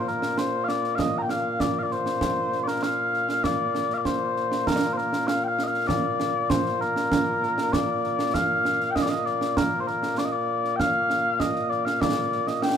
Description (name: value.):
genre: scottish traditional, Scottish pipe music.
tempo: 98 BPM.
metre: 4/4.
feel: straight.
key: Bb major.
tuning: A4 = 440 Hz.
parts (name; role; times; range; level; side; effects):
mellow small bagpipes; melody; 0.0-12.8 s; Bb2 to Bb5; -24 LUFS; left 2 dB; none.
concert snare drum and concert bass drum; drums; 0.1-12.8 s; none; -28 LUFS; right 4 dB; none.
room: light reverb.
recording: minimal, uncompressed stereo recording.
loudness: -22 LUFS.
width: side -8 dB against mid.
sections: 0.0-12.8 A section.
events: none.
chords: none.